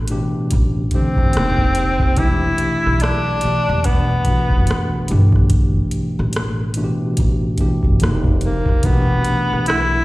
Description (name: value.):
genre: R&B, neo-soul.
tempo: 72 BPM.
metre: 4/4.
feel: swing 59% on 16ths.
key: E minor.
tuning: A4 = 439 Hz.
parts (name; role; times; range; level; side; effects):
tine electric piano; accompaniment; 0.0-10.0 s; B2 to G4; -20 LUFS; equal; medium tremolo.
upright bass; bass; 0.0-10.0 s; E1 to B1; -20 LUFS; equal; none.
booming analog drum machine; drums; 0.1-9.9 s; hi-hat, kick drum, rim click; -19 LUFS; equal; overdrive.
breathy tenor saxophone; melody; 0.9-10.0 s; A#3 to E4; -20 LUFS; left 1 dB; slapback echo.
room: studio reverb.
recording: live gig heard through the venue's PA, recital hall reverb.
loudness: -15 LUFS.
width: side -19 dB against mid.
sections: 0.0-10.0 A section.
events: none.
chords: 0.0 G69; 1.3 Fsus2; 2.2 Em9; 5.1 G69; 8.0 Fsus2; 8.8 Em7.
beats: 0.51 1.34 | 2.17 3.00 3.84 4.67 | 5.50 6.34 7.17 8.01 | 8.84 9.67.